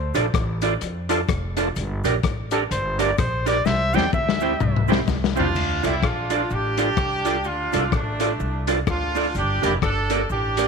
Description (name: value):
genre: ska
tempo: 127 BPM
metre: 4/4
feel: swing 60% on 8ths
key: D minor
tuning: A4 = 440 Hz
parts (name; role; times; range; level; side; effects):
- warm trumpet; melody; 0.0-4.9 s; A4 to G5; -26 LUFS; left 1 dB; tape echo
- upright bass; bass; 0.0-10.7 s; F1 to F2; -27 LUFS; equal; none
- vintage hollow-body jazz guitar; accompaniment; 0.1-10.7 s; C4 to D5; -26 LUFS; right 12 dB; none
- tonewheel organ; stabs; 0.1-10.7 s; Bb3 to C5; -31 LUFS; left 11 dB; overdrive, chorus vibrato, slow rotary speaker
- cabasa; percussion; 0.1-10.7 s; none; -48 LUFS; left 17 dB; none
- vintage drum kit; drums; 0.2-10.7 s; crash cymbal, hi-hat, kick drum, rim click, snare drum, toms; -24 LUFS; left 5 dB; none
- clear horn section; melody; 5.4-10.7 s; A3 to A4; -24 LUFS; right 2 dB; none
room: light reverb, studio reverb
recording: 1960s-style stereo with parts hard left and right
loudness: -20 LUFS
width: side -5 dB against mid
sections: 0.0-5.6 A section; 5.6-10.7 B section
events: trumpet solo 0.0-5.6; drum fill 3.7-5.6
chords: 0.0 Dm; 1.8 Gm; 3.7 C; 5.6 Dm; 9.3 Gm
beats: 0.34 0.81 1.29 | 1.76 2.23 2.71 3.18 | 3.66 4.13 4.60 5.08 | 5.55 6.03 6.50 6.97 | 7.45 7.92 8.40 8.87 | 9.35 9.82 10.29